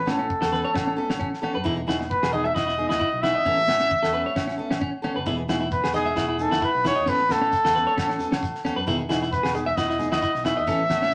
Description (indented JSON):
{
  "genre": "highlife guitar band",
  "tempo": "133 BPM",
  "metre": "4/4",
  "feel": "swing 54% on 16ths",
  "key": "E major",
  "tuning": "A4 = 442 Hz",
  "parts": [
    { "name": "mellow trumpet", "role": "melody", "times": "0.0-11.1 s", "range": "G#4 to E5", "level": "-26 LUFS", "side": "equal", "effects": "none" },
    { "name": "fingered electric bass", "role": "bass", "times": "0.0-11.1 s", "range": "E1 to A2", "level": "-37 LUFS", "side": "equal", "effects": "none" },
    { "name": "picked steel-string acoustic guitar", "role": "accompaniment", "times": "0.1-11.1 s", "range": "D#3 to A4", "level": "-33 LUFS", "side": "equal", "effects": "none" },
    { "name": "clean electric guitar", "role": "arpeggios", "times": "0.1-11.1 s", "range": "C#4 to E5", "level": "-30 LUFS", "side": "equal", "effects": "none" },
    { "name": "damped 70s drum kit", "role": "drums", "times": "0.1-11.1 s", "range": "kick drum, snare drum", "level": "-34 LUFS", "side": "equal", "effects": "none" },
    { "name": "agogo bells", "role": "percussion", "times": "0.1-11.0 s", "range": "none", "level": "-37 LUFS", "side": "equal", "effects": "none" },
    { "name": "congas", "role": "percussion", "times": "0.1-11.1 s", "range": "none", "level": "-43 LUFS", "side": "equal", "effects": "none" },
    { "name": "shekere", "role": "percussion", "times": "5.3-11.1 s", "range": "none", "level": "-48 LUFS", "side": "equal", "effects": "none" }
  ],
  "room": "wet studio reverb, RT60 0.6 s",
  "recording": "none",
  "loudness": "-24 LUFS",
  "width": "mono",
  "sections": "0.0-11.1 A section",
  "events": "none",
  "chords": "0.0 Aadd9; 1.7 Emaj7; 3.5 Aadd9; 5.3 Emaj7; 7.1 Aadd9; 8.9 Emaj7",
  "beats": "0.30 0.75 1.21 | 1.66 2.11 2.56 3.01 | 3.46 3.91 4.36 4.82 | 5.27 5.72 6.17 6.62 | 7.07 7.52 7.97 8.42 | 8.88 9.33 9.78 10.23 | 10.68 11.13"
}